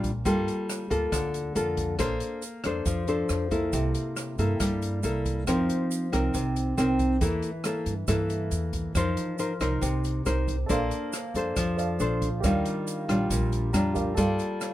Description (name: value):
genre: bossa nova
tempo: 138 BPM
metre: 4/4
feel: straight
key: Bb major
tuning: A4 = 438 Hz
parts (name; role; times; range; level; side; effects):
- nylon-string guitar; accompaniment; 0.0-14.7 s; Bb2 to C5; -27 LUFS; left 1 dB; none
- upright bass; bass; 0.0-14.4 s; Bb1 to G2; -30 LUFS; right 1 dB; none
- open jazz drum kit; drums; 0.0-14.7 s; hi-hat, kick drum, rim click; -35 LUFS; equal; none
- tube shaker; percussion; 0.0-14.7 s; none; -41 LUFS; right 8 dB; none
- warm concert grand piano; accompaniment; 10.7-14.7 s; G4 to Bb5; -33 LUFS; right 2 dB; none
room: light reverb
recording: close, detailed microphones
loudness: -25 LUFS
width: side -14 dB against mid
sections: 0.0-14.7 A section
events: grand piano fill 13.5-14.2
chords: 0.3 Gm9; 2.0 Bbmaj9; 3.7 C6; 5.5 F7sus4; 7.2 Gm69/E; 9.0 F7sus4; 10.7 Bbmaj9; 12.4 Ebmaj9; 14.2 Gm9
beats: | 0.25 0.69 1.12 1.55 | 1.99 2.42 2.86 3.29 | 3.73 4.17 4.60 5.04 | 5.47 5.91 6.34 6.78 | 7.21 7.65 8.08 8.52 | 8.95 9.39 9.82 10.26 | 10.70 11.13 11.56 12.00 | 12.44 12.87 13.30 13.74 | 14.18 14.61